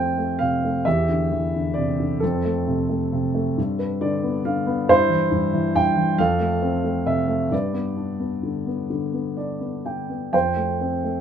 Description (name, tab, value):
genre	classical, lyrical solo piano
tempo	42-46 BPM (dotted quarters)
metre	6/8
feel	rubato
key	F lydian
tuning	A4 = 439 Hz
part	warm concert grand piano	solo	0.0-11.2 s	E2 to G5	-20 LUFS	equal	none
room	light reverb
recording	none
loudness	-20 LUFS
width	side -8 dB against mid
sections	0.0-11.2 A section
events	grand piano fill 3.6-4.9, 8.9-10.3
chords	0.0 F; 0.9 Cadd9/E; 2.2 F; 3.6 G; 4.9 C/G; 6.2 F; 7.5 G; 10.3 Fadd9